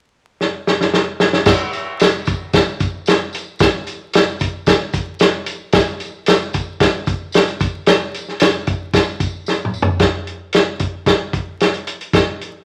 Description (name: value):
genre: soul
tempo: 112 BPM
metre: 4/4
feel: straight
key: none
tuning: none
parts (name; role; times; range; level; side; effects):
- warm soul drum kit; drums; 0.4-12.5 s; crash cymbal, hi-hat, kick drum, snare drum, toms; -17 LUFS; equal; none
- tambourine; percussion; 1.5-9.9 s; none; -36 LUFS; equal; none
room: moderate large studio reverb, RT60 0.9 s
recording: vinyl crackle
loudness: -17 LUFS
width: mono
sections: 0.0-1.5 A section; 1.5-10.0 B section; 10.0-12.6 C section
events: drum fill 0.4-1.5, 9.5-10.0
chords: none